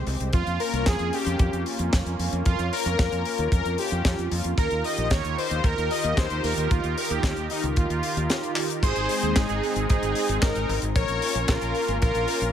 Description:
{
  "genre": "italo disco",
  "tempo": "113 BPM",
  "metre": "4/4",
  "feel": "straight",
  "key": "Bb dorian",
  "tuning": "A4 = 438 Hz",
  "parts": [
    { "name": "analog synth brass", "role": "melody", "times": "0.0-12.5 s", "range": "Eb4 to Eb5", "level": "-27 LUFS", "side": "equal", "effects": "chorus, digital delay" },
    { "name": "lush unison pad", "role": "sustained chords", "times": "0.0-12.5 s", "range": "Eb3 to Bb4", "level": "-30 LUFS", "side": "equal", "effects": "chorus, phaser" },
    { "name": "modern bright fingered electric bass", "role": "bass", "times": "0.0-12.5 s", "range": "Ab1 to F2", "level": "-29 LUFS", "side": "equal", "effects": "tube saturation" },
    { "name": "tight funk drum kit", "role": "drums", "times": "0.1-12.5 s", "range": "crash cymbal, handclaps, hi-hat, snare drum", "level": "-30 LUFS", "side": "left 2 dB", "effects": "none" },
    { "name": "kick drum", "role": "drums", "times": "0.3-12.1 s", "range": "none", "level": "-22 LUFS", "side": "equal", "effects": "none" }
  ],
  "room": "light reverb, small room ambience",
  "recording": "none",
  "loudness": "-22 LUFS",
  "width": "side -9 dB against mid",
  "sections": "0.0-8.8 A section; 8.8-12.5 B section",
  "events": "drum fill 8.6",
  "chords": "0.3 Bbm; 4.6 Ebadd9; 8.8 Ab; 11.0 Bbm"
}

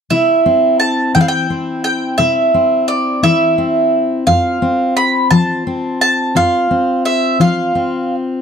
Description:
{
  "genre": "folk",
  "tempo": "58 BPM (dotted quarters)",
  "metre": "6/8",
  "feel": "straight",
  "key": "C major",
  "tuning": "A4 = 440 Hz",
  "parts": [
    { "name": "mandolin", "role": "melody", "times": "0.1-8.1 s", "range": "D5 to B5", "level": "-14 LUFS", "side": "right 2 dB", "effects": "none" },
    { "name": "fingerpicked steel-string acoustic guitar", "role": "accompaniment", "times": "0.1-8.4 s", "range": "F2 to F4", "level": "-16 LUFS", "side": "left 3 dB", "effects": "none" }
  ],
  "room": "little or no reverb",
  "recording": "dry, close 1970s-style studio recording",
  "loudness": "-12 LUFS",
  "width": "side -7 dB against mid",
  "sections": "0.1-8.4 A section",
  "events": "none",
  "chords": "0.1 C; 4.3 F"
}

